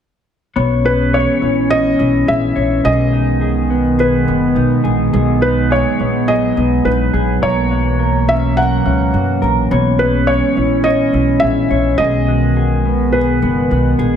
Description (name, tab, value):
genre	dream pop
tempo	105 BPM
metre	4/4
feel	straight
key	B major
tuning	A4 = 440 Hz
part	warbly tape-like pad	sustained chords	0.6-14.2 s	D#3 to C#4	-17 LUFS	right 2 dB	chorus, built-in reverb
part	mellow electric guitar	arpeggios	0.6-14.2 s	B2 to C#5	-18 LUFS	left 2 dB	analog chorus, tape echo
part	upright bass	bass	0.6-14.2 s	F#1 to F#2	-18 LUFS	equal	none
part	felt-muted upright piano	melody	0.9-13.9 s	B4 to F#5	-18 LUFS	equal	tape echo
room	moderate scoring stage reverb, RT60 1.9 s, studio ambience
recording	none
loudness	-12 LUFS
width	side -8 dB against mid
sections	0.6-14.2 A section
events	none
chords	0.6 E6; 2.9 B6; 5.1 G#m7; 7.4 F#7/B; 9.7 E6; 12.0 B6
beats	| 0.57 1.14 1.71 2.28 | 2.85 3.42 3.99 4.57 | 5.14 5.71 6.28 6.85 | 7.42 7.99 8.57 9.14 | 9.71 10.28 10.85 11.42 | 11.99 12.57 13.14 13.71